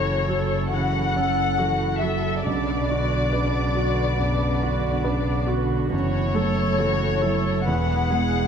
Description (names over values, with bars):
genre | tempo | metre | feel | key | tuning
neoclassical piano and strings | 69 BPM | 4/4 | rubato | F# minor | A4 = 439 Hz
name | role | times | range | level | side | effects
muted chamber violin section | melody | 0.0-8.5 s | C#5 to F#5 | -26 LUFS | left 5 dB | none
muted cello | second line | 0.0-8.5 s | C#3 to G#3 | -29 LUFS | right 5 dB | none
clear concert grand piano | accompaniment | 0.0-8.5 s | B1 to B4 | -28 LUFS | right 1 dB | none
muted viola | accompaniment | 0.0-8.5 s | D4 to B4 | -31 LUFS | right 5 dB | none
muted chamber string section | sustained chords | 0.0-8.5 s | B3 to B4 | -33 LUFS | right 3 dB | none
muted double bass | bass | 0.0-8.5 s | E1 to B1 | -26 LUFS | equal | none
room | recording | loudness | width
wet lush hall reverb, RT60 2.1 s | dreamy mix soaked in reverb | -20 LUFS | side -7 dB against mid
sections
0.0-8.5 A section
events
none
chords
0.0 F#m7; 2.5 Bmadd9; 5.9 F#m7; 7.7 E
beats
0.73 1.59 | 2.46 3.33 4.20 5.06 | 5.92 6.79 7.67